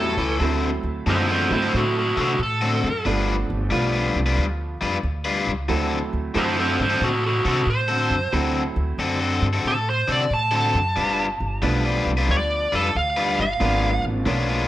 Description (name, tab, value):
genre	electric blues shuffle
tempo	91 BPM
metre	4/4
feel	swing 67% on 8ths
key	D mixolydian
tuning	A4 = 440 Hz
part	smooth overdriven lead guitar	melody	0.0-14.0 s	F#4 to A5	-23 LUFS	right 1 dB	none
part	bright upright piano	accompaniment	0.0-14.7 s	F3 to A4	-28 LUFS	right 4 dB	none
part	crunchy overdriven guitar	riff	0.0-14.7 s	A2 to B4	-24 LUFS	left 3 dB	spring reverb
part	upright bass	bass	0.0-14.7 s	G1 to C3	-25 LUFS	equal	none
room	light reverb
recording	none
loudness	-19 LUFS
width	side -14 dB against mid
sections	0.4-14.7 A section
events	none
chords	0.4 D7; 3.0 G7; 5.7 D7; 11.0 G7; 13.6 G#dim7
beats	| 0.41 1.07 1.73 2.39 | 3.05 3.71 4.37 5.03 | 5.69 6.35 7.01 7.67 | 8.33 8.99 9.65 10.31 | 10.96 11.62 12.28 12.94 | 13.60 14.26